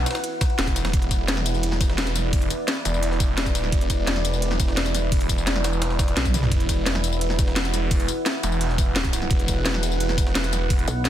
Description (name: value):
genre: dark technical drum and bass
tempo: 172 BPM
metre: 4/4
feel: straight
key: unclear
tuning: A4 = 440 Hz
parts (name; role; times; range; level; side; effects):
- deep dark ambient pad; sustained chords; 0.0-11.1 s; E4 to F#5; -29 LUFS; right 1 dB; chorus, built-in reverb, sidechain pumping
- snarling distorted saw bass; bass; 0.0-10.9 s; E1 to B1; -25 LUFS; equal; distortion, tube saturation, sidechain pumping
- drum and bass drum kit; drums; 0.1-11.1 s; hi-hat, snare drum, tambourine, toms; -26 LUFS; left 1 dB; none
- jungle sampler-style drum kit; drums; 0.1-11.1 s; hi-hat, ride cymbal, snare drum; -34 LUFS; right 1 dB; high-pass filter on cymbals, high-pass filter on snare, high-pass filter on hats
- electronic kick drum; drums; 0.4-10.8 s; none; -22 LUFS; equal; none
- pulsing pluck wobble bass; bass; 10.9-11.1 s; B1; -23 LUFS; right 1 dB; chorus
room: light reverb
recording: dense, heavily limited modern master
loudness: -20 LUFS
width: side -11 dB against mid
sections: 0.0-11.1 A section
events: drum fill 6.3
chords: 0.0 E5